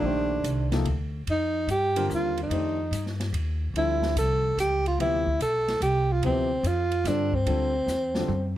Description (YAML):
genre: modal jazz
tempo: 145 BPM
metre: 3/4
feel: swing 67% on 8ths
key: unclear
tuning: A4 = 440 Hz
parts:
  - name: breathy alto saxophone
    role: melody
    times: 0.0-8.6 s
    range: C4 to A4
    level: -26 LUFS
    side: right 1 dB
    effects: plate reverb
  - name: warm baby grand piano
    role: accompaniment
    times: 0.0-8.3 s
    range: C3 to C5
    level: -31 LUFS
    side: left 4 dB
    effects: none
  - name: upright bass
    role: bass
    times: 0.0-8.6 s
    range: Bb1 to G2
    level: -28 LUFS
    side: equal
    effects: none
  - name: open jazz drum kit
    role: drums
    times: 0.4-8.4 s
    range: hi-hat, kick drum, ride cymbal, snare drum, toms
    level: -37 LUFS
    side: right 1 dB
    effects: none
room: light reverb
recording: none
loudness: -23 LUFS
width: side -13 dB against mid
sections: 0.0-8.6 A section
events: drum fill 7.9-8.6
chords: 0.0 F13sus4; 3.8 G13sus4